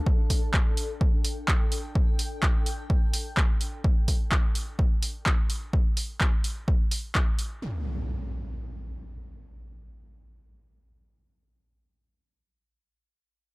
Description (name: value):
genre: acid house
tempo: 127 BPM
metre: 4/4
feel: swing 53% on 16ths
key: unclear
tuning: A4 = 440 Hz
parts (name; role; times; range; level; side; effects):
- granular cloud pad; texture; 0.0-3.8 s; D4 to G5; -40 LUFS; left 3 dB; built-in reverb, sidechain pumping
- electronic kick drum; drums; 0.1-7.3 s; none; -24 LUFS; equal; none
- punchy analog drum machine; drums; 0.3-7.5 s; handclaps, hi-hat; -30 LUFS; equal; none
- impact; sound effects; 7.6-11.2 s; none; -35 LUFS; equal; none
room: digital ambience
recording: dry, gritty hardware recording, transformer saturation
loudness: -24 LUFS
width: side -24 dB against mid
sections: 0.0-7.6 A section; 7.6-11.4 B section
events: none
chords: 0.0 D5; 7.6 N.C.